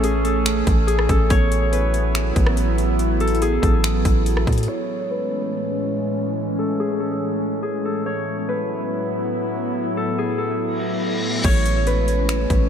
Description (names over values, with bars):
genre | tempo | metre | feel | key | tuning
hip hop, atmospheric cloud-rap | 142 BPM | 4/4 | half-time | A major | A4 = 442 Hz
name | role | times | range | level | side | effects
Celtic harp | melody | 0.0-12.7 s | G#4 to C#5 | -25 LUFS | left 1 dB | low-pass filter, tape echo
warbly tape-like pad | sustained chords | 0.0-12.7 s | A2 to G#4 | -24 LUFS | equal | chorus, built-in reverb, sidechain pumping, low-pass filter
muted felt-like synth keys | arpeggios | 0.0-4.7 s | A3 to G#4 | -33 LUFS | equal | none
long sustained 808-style bass | bass | 0.0-4.7, 11.4-12.7 s | A1 to A2 | -20 LUFS | equal | none
trap drum kit | drums | 0.0-4.7, 11.4-12.6 s | crash cymbal, finger snaps, hi-hat, kick drum, rim click | -22 LUFS | equal | overdrive
reverse cymbal | sound effects | 10.7-11.4 s | none | -30 LUFS | left 2 dB | none
room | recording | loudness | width
moderate huge ambient reverb, RT60 7.9 s | dreamy mix soaked in reverb | -18 LUFS | side -8 dB against mid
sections
0.0-4.7 A section; 4.7-11.4 B section; 11.4-12.7 C section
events
filter sweep 4.7-11.4; reverse cymbal 10.7-11.4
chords
0.0 Amaj7; 1.3 Bsus4/A; 4.7 Amaj7; 8.1 Bsus4/A; 11.4 Amaj7